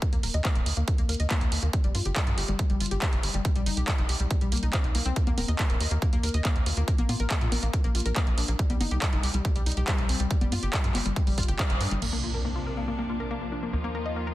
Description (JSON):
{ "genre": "uplifting trance", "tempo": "140 BPM", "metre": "4/4", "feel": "straight", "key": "unclear", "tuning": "A4 = 440 Hz", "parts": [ { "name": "analog pluck", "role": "arpeggios", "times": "0.0-14.3 s", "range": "G3 to Eb5", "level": "-33 LUFS", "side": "left 4 dB", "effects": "chorus, sidechain pumping, tape echo" }, { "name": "electronic kick drum", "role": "drums", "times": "0.0-11.7 s", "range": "none", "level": "-26 LUFS", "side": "equal", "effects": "none" }, { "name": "punchy analog drum machine", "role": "drums", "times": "0.0-12.1 s", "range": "congas, crash cymbal, handclaps, hi-hat", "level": "-31 LUFS", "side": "right 1 dB", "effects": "none" }, { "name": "tight sequencer bass", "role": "bass", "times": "0.1-14.3 s", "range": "Eb1 to Bb2", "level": "-29 LUFS", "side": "equal", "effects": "sidechain pumping" }, { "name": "rich chamber string section", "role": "sustained chords", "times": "12.0-14.3 s", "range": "C3 to F4", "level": "-35 LUFS", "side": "equal", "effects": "sidechain pumping, low-pass filter" }, { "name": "impact", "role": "sound effects", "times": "12.0-13.7 s", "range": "none", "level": "-34 LUFS", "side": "equal", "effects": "none" } ], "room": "light reverb", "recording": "dense, heavily limited modern master", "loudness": "-24 LUFS", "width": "side -16 dB against mid", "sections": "0.0-12.0 A section; 12.0-14.3 B section", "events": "filter sweep on synth pluck 0.0-12.0, 12.0-14.3; band accent 11.6; impact 12.0-13.7; filter sweep on string section 12.0-14.3", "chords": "0.0 Eb5; 1.7 N.C.; 3.4 C5; 5.2 Eb5; 6.9 N.C.; 8.6 C5; 10.3 G5; 12.0 Bbadd9; 13.7 Ebsus2" }